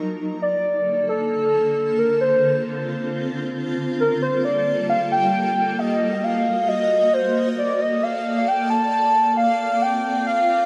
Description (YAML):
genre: IDM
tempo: 134 BPM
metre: 4/4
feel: straight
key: Bb major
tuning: A4 = 437 Hz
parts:
  - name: warbly nostalgic lead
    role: melody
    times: 0.4-10.7 s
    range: A4 to A5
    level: -22 LUFS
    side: equal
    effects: lush chorus, cassette tape, dub echo
  - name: granular cloud pad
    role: sustained chords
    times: 0.4-10.7 s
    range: D3 to Eb5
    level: -27 LUFS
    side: equal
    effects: built-in reverb, vintage 12-bit sampler grit
room: moderate echo chamber reverb, RT60 2.6 s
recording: echo-heavy mix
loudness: -21 LUFS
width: mono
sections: 0.4-10.7 A section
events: stop 0.0-0.4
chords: 0.4 Bbmaj7; 2.2 Dm7; 4.0 Gm9; 5.8 Ebm; 7.6 Bbmaj7; 9.4 Dm7